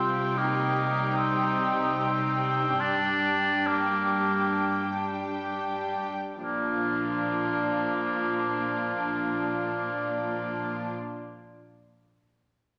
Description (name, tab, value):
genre	cinematic, emotional film score for orchestra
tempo	62-77 BPM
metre	4/4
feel	rubato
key	Bb major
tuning	A4 = 440 Hz
part	warm cor anglais	melody	0.0-10.9 s	Bb3 to D4	-31 LUFS	equal	none
part	rich studio violin section	second line	0.0-10.9 s	F4 to G5	-36 LUFS	equal	none
part	warm studio viola section	accompaniment	0.0-10.9 s	F3 to F4	-32 LUFS	equal	none
part	warm studio cello section	bass	0.0-10.9 s	G2 to C3	-38 LUFS	equal	none
room	wet scoring stage reverb, RT60 1.6 s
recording	none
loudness	-28 LUFS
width	mono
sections	0.0-6.4 A section; 6.4-10.1 B section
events	slowing down 0.0-6.4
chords	0.0 Cm; 2.8 Gm; 6.4 Bb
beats	0.38 1.17 1.98 | 2.80 3.65 4.53 5.43 | 6.38 7.32 8.25 9.18